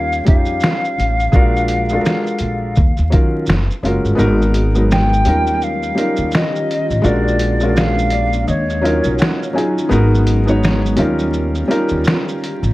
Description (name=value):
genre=lo-fi hip hop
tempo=84 BPM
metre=4/4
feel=swing 61% on 16ths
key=unclear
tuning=A4 = 440 Hz
part: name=mellow hollow silver concert flute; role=melody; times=0.0-9.5 s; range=C#5 to G5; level=-20 LUFS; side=left 1 dB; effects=analog delay
part: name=felt-muted upright piano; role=accompaniment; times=0.0-12.7 s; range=F#3 to G#5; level=-18 LUFS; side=equal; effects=cassette tape
part: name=upright bass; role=bass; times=0.0-12.7 s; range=F#1 to D#3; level=-17 LUFS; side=equal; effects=none
part: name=lo-fi sampler-style drum kit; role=drums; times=0.1-12.7 s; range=finger snaps, hi-hat, kick drum, shaker, snare drum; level=-17 LUFS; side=equal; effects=none
part: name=granular cloud pad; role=sustained chords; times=5.3-12.7 s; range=D#3 to A#4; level=-26 LUFS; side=right 1 dB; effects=built-in reverb
room=moderate studio reverb, RT60 0.5 s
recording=dark, warm production, vinyl crackle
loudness=-13 LUFS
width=side -18 dB against mid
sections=0.0-4.2 A section; 4.2-12.7 B section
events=kick muted 4.2-12.7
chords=0.0 D#9; 1.3 A#7b13; 2.8 D#m9; 3.5 F#maj7; 4.2 G#m9; 5.3 D#9; 7.1 A#7b13; 8.5 D#m9; 9.9 G#m9; 11.0 D#9